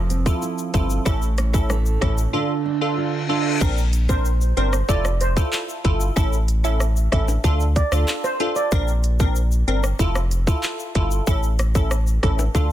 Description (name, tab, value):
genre	dancehall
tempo	94 BPM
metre	4/4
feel	straight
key	unclear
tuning	A4 = 440 Hz
part	nylon-string guitar	arpeggios	0.0-4.2 s	A2 to F4	-26 LUFS	right 7 dB	none
part	round analog bass	bass	0.0-12.7 s	F1 to D2	-20 LUFS	equal	none
part	island pop drum kit	drums	0.1-12.7 s	crash cymbal, handclaps, hi-hat, kick drum, rim click, shaker	-23 LUFS	equal	vintage 12-bit sampler grit
part	egg shaker and timbales	percussion	0.1-12.7 s	none	-36 LUFS	left 8 dB	none
part	wavetable chord stab	accompaniment	0.3-12.7 s	C4 to Bb4	-26 LUFS	equal	none
part	reverse cymbal	sound effects	2.7-3.6 s	none	-30 LUFS	left 6 dB	none
part	steel pan	melody	4.1-8.7 s	C5 to E5	-27 LUFS	right 3 dB	digital delay
room	little or no reverb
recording	dense, heavily limited modern master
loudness	-18 LUFS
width	side -12 dB against mid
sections	0.0-3.6 A section; 3.6-12.7 B section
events	reverse cymbal 2.7-3.6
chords	0.0 Fmaj7; 1.1 A; 2.3 Dm; 3.6 Bbadd9; 4.9 Fmaj7; 6.2 A; 7.4 Dm; 8.7 Bbadd9; 10.0 Fmaj7; 11.3 A